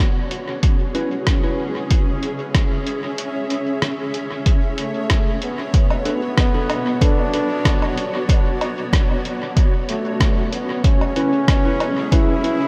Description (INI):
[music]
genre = ambient dub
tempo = 94 BPM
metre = 4/4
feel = swing 53% on 16ths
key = B dorian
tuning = A4 = 440 Hz
[part]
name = granular cloud pad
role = sustained chords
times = 0.0-12.7 s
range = B3 to E5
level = -27 LUFS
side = equal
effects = built-in reverb, subtle chorus
[part]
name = lo-fi sampler-style drum kit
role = drums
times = 0.3-12.6 s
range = hi-hat, rim click, woodblock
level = -29 LUFS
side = equal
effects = dub echo
[part]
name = electronic kick drum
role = drums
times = 0.6-12.3 s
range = none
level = -19 LUFS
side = equal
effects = overdrive
[part]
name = bell-like tine electric piano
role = stabs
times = 0.9-1.6, 6.1-12.6 s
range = C#4 to B4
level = -29 LUFS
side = equal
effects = dub echo
[part]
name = warm trombone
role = melody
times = 4.8-12.7 s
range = A3 to E4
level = -27 LUFS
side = equal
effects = dub echo
[sound]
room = moderate huge ambient reverb, RT60 7.1 s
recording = dreamy mix soaked in reverb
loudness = -19 LUFS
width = mono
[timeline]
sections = 0.0-4.5 A section; 4.5-12.7 B section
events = kick drops out 3.2-4.5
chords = 0.0 C#m7; 4.5 Bm7; 9.6 C#m7